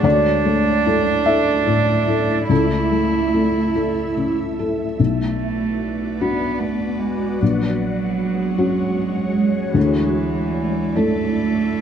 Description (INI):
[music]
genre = neoclassical piano and strings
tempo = 49 BPM (dotted quarters)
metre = 6/8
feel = rubato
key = B dorian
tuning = A4 = 439 Hz
[part]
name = warm cello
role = second line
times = 0.0-11.8 s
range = E3 to E4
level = -21 LUFS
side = right 6 dB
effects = none
[part]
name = felt-muted upright piano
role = accompaniment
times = 0.0-11.8 s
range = A#1 to E5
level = -20 LUFS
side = left 4 dB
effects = none
[part]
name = ethereal airy pad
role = sustained chords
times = 0.0-11.8 s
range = G#3 to E5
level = -24 LUFS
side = right 1 dB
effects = ensemble chorus, built-in reverb, phaser
[sound]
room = light reverb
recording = close, detailed microphones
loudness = -17 LUFS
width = side -8 dB against mid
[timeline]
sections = 0.0-5.0 A section; 5.0-11.8 B section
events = none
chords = 0.0 Dsus2; 2.5 A/C#; 5.0 Bm7; 7.4 F#add9/A#; 9.8 Dsus2